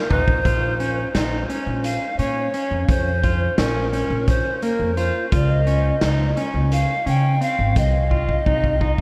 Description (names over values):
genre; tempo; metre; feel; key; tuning
progressive instrumental, band music in an uneven meter; 172 BPM (eighths); 7/8; straight; Bb dorian; A4 = 436 Hz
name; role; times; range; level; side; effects
polished pan flute; melody; 0.0-9.0 s; Bb4 to G5; -26 LUFS; equal; tape echo
clean electric guitar; arpeggios; 0.0-9.0 s; Bb3 to F4; -29 LUFS; equal; harmonic tremolo
upright bass; bass; 0.1-9.0 s; Ab1 to Db3; -24 LUFS; equal; none
raw garage drum kit; drums; 0.1-9.0 s; hi-hat, kick drum, snare drum, toms; -26 LUFS; equal; none
room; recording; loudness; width
moderate huge ambient reverb, RT60 8.0 s; dreamy mix soaked in reverb; -20 LUFS; mono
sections
0.5-9.0 A section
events
drum fill 0.0-0.5, 8.1-9.0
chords
0.5 Bbmadd9; 5.3 Dbadd9; 7.8 Cm